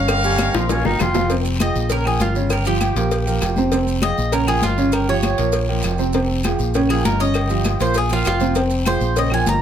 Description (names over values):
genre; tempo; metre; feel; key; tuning
latin, salsa; 198 BPM; 4/4; straight; F minor; A4 = 439 Hz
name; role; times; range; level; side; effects
bright trumpet section; melody; 0.0-1.1 s; Bb4 to F5; -22 LUFS; left 2 dB; none
clear concert grand piano; accompaniment; 0.0-9.6 s; C3 to Db6; -22 LUFS; right 3 dB; none
fingered electric bass; bass; 0.0-9.6 s; F1 to Bb1; -21 LUFS; equal; none
claves; percussion; 0.1-9.5 s; none; -32 LUFS; left 4 dB; none
congas; percussion; 0.1-9.6 s; none; -26 LUFS; left 4 dB; none
cowbell and bongos; percussion; 0.1-9.6 s; none; -26 LUFS; left 4 dB; none
guiro; percussion; 0.1-9.6 s; none; -34 LUFS; left 6 dB; none
maracas; percussion; 0.1-9.6 s; none; -35 LUFS; right 7 dB; none
timbales and agogo bells; percussion; 0.1-9.6 s; none; -28 LUFS; right 3 dB; none
clear baritone saxophone; second line; 0.2-1.3 s; C4 to F4; -24 LUFS; left 3 dB; none
Cuban tres; melody; 1.6-9.6 s; F4 to Bb5; -22 LUFS; equal; none
room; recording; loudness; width
light reverb; close, detailed microphones; -16 LUFS; side -9 dB against mid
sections
0.0-1.3 A section; 1.3-9.6 B section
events
drum fill 0.1-1.3; Cuban tres solo 1.3-9.6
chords
0.1 Gm7b5; 0.7 Bb5; 1.3 Fm; 1.9 Gm7b5; 3.1 Bb5; 3.7 Fm; 4.3 Gm7b5; 5.5 Bbm; 6.1 Fm; 6.7 Gm7b5; 8.0 Bb5; 8.6 Fm